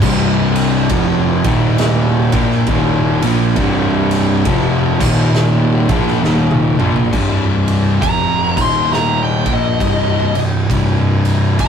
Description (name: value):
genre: stoner and doom metal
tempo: 68 BPM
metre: 4/4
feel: swing 62% on 8ths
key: C minor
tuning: A4 = 440 Hz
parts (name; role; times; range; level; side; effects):
- crunchy overdriven guitar; riff; 0.0-7.1 s; C2 to Bb3; -19 LUFS; right 2 dB; none
- thick fuzz guitar; riff; 0.0-11.7 s; C2 to Bb3; -16 LUFS; left 4 dB; distortion
- thick fuzz guitar; riff; 0.0-11.7 s; C2 to Bb3; -21 LUFS; right 5 dB; distortion
- fuzz picked electric bass; bass; 0.0-11.7 s; C1 to Bb1; -21 LUFS; right 1 dB; overdrive
- raw garage drum kit; drums; 0.0-11.7 s; crash cymbal, kick drum, ride cymbal, snare drum, toms; -20 LUFS; right 2 dB; none
- fuzz lead guitar; melody; 8.0-11.7 s; Eb5 to C6; -17 LUFS; equal; distortion
room: moderate booth ambience, RT60 0.2 s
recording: rough rehearsal-room recording, warm saturation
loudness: -12 LUFS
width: side -7 dB against mid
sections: 0.0-7.1 A section; 7.1-11.7 B section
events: drum fill 6.2-7.1; lead electric guitar solo 7.1-11.7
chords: 0.0 C5; 1.4 Eb5; 2.2 Cm; 4.9 Eb5; 5.8 Ebsus2; 7.1 C5; 8.5 Eb5; 9.4 Cm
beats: | 0.03 0.91 1.80 2.69 | 3.57 4.46 5.35 6.24 | 7.13 8.02 8.91 9.80 | 10.70 11.59